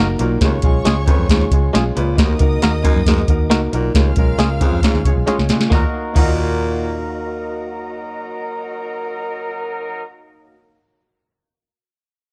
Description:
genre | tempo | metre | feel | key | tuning
uptempo 1960s-style soul | 136 BPM | 4/4 | straight | Eb minor | A4 = 438 Hz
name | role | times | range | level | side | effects
warm studio violin section | second line | 0.0-10.0 s | Gb4 to F6 | -34 LUFS | equal | none
warm upright piano | accompaniment | 0.0-10.5 s | Ab3 to Cb5 | -26 LUFS | equal | none
direct-recorded clean electric guitar | stabs | 0.0-10.6 s | Ab3 to Bb4 | -27 LUFS | equal | tape echo
vintage muted fingered electric bass | bass | 0.0-10.5 s | Gb1 to Db3 | -23 LUFS | equal | none
growling baritone saxophone | riff | 0.2-7.0 s | Eb2 to Bb2 | -27 LUFS | equal | none
soft vintage rhythm box | drums | 0.2-6.3 s | crash cymbal, hi-hat, kick drum, snare drum | -18 LUFS | equal | none
mellow horn section | second line | 5.0-10.0 s | Gb3 to Db5 | -30 LUFS | equal | none
room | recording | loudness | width
small room ambience | dark, warm production | -17 LUFS | mono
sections
0.0-5.7 A section; 5.7-9.3 B section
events
band accent 3.9-5.7; drum fill 5.3-5.7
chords
0.4 Db; 2.2 Ebm; 3.9 Db; 5.7 Ebm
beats
| 0.41 0.85 1.29 1.74 | 2.18 2.62 3.06 3.50 | 3.94 4.39 4.83 5.27 | 5.72 6.16 6.60 7.05 | 7.49 7.93 8.38 8.82

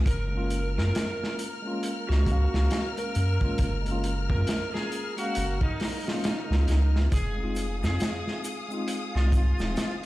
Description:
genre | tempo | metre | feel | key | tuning
trip hop | 68 BPM | 4/4 | swing 60% on 16ths | unclear | A4 = 443 Hz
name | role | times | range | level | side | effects
tine electric piano | accompaniment | 0.0-10.1 s | Ab3 to F5 | -33 LUFS | left 1 dB | tremolo, tape echo
dark symphonic string section | sustained chords | 0.0-10.1 s | Ab4 to F6 | -37 LUFS | left 3 dB | none
round analog bass | bass | 0.0-9.7 s | Eb1 to Gb2 | -25 LUFS | equal | none
overdriven slide guitar | melody | 0.1-9.9 s | Eb4 to Bb4 | -35 LUFS | right 1 dB | tape echo
crunchy breakbeat drum kit | drums | 0.1-10.1 s | hi-hat, kick drum, snare drum | -30 LUFS | equal | none
egg shaker | percussion | 7.1-10.0 s | none | -47 LUFS | left 2 dB | none
room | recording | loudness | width
little or no reverb | played on a big sound system in a bare room, stone room reverb | -24 LUFS | side -17 dB against mid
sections
0.0-10.1 A section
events
none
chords
0.1 Gbmaj7; 7.1 Fm7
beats
| 0.06 0.94 1.83 2.71 | 3.59 4.47 5.36 6.24 | 7.12 8.00 8.88 9.77

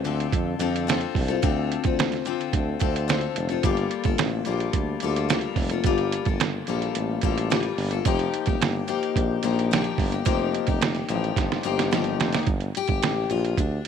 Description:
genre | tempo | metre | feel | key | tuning
indie pop, bedroom pop | 109 BPM | 4/4 | straight | unclear | A4 = 440 Hz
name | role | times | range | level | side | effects
picked steel-string acoustic guitar | accompaniment | 0.0-13.9 s | D3 to A4 | -26 LUFS | left 10 dB | wide subtle chorus, vibrato effect
warm tuba | bass | 0.0-13.9 s | F1 to F2 | -28 LUFS | right 1 dB | none
lo-fi sampler-style drum kit | drums | 0.1-13.9 s | hi-hat, kick drum, snare drum | -25 LUFS | right 5 dB | overdrive
room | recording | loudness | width
light reverb, small room ambience | 1960s-style stereo | -22 LUFS | side -8 dB against mid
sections
0.0-12.5 A section; 12.5-13.9 B section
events
drum fill 11.4-12.5; steel-string acoustic guitar solo 12.5-13.9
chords
0.0 Dm7; 3.6 Gm9; 8.1 F9sus4; 12.5 Gmadd9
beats
0.33 0.88 | 1.43 1.99 2.54 3.09 | 3.64 4.19 4.74 5.29 | 5.85 6.40 6.95 7.50 | 8.05 8.61 9.16 9.71 | 10.26 10.81 11.37 11.92 | 12.47 13.02 13.57

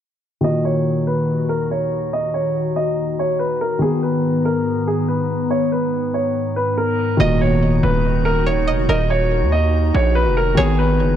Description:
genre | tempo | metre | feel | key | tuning
hip hop | 142 BPM | 4/4 | half-time | Eb minor | A4 = 438 Hz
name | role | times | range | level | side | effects
clear grand piano | melody | 0.4-11.2 s | Ab4 to Eb5 | -21 LUFS | right 1 dB | low-pass filter, tape echo
dark concert grand piano | accompaniment | 0.4-11.2 s | Bb2 to Ab4 | -22 LUFS | left 2 dB | low-pass filter
glassy FM pad | sustained chords | 0.9-11.2 s | Eb2 to Bb5 | -23 LUFS | left 2 dB | ensemble chorus, built-in reverb
string-like resonator pluck | second line | 7.2-11.2 s | Bb4 to Eb5 | -27 LUFS | right 2 dB | chorus, tape echo
distorted 808-style bass | bass | 7.2-11.2 s | Eb1 to Eb2 | -18 LUFS | right 1 dB | distortion
room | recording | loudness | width
small room ambience | dry, gritty hardware recording, cassette tape, low-pass filter | -16 LUFS | side -10 dB against mid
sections
0.4-7.2 A section; 7.2-11.2 B section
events
filter sweep 0.4-7.2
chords
0.4 Ebm; 3.8 Abmadd9; 7.2 Ebm; 10.6 Abmadd9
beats
| 0.44 0.86 1.28 1.71 | 2.13 2.55 2.97 3.40 | 3.82 4.24 4.66 5.08 | 5.51 5.93 6.35 6.78 | 7.20 7.62 8.04 8.47 | 8.89 9.31 9.73 10.16 | 10.58 11.00

